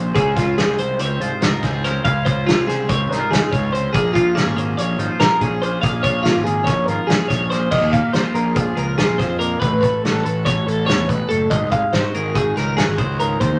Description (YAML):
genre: math rock and midwest emo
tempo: 285 BPM (eighths)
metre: 9/8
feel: straight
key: unclear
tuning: A4 = 439 Hz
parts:
  - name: twelve-string electric guitar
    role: accompaniment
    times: 0.0-13.6 s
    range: Ab2 to Eb5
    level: -27 LUFS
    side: equal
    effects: spring reverb
  - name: twelve-string electric guitar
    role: arpeggios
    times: 0.0-13.6 s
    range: F4 to F5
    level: -23 LUFS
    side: equal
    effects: phaser
  - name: fuzz picked electric bass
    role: bass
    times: 0.0-13.6 s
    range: F#1 to F2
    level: -25 LUFS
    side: equal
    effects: overdrive
  - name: loose indie drum kit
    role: drums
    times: 0.2-13.5 s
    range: crash cymbal, hi-hat, kick drum, snare drum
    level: -23 LUFS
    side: equal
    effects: none
room: moderate studio ambience, RT60 0.5 s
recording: nothing above 10.8 kHz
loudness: -19 LUFS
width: mono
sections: 0.0-7.7 A section; 7.7-13.6 B section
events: none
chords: 0.2 Dbmaj7; 3.9 Bbm7; 9.6 A6; 11.5 Ab7sus4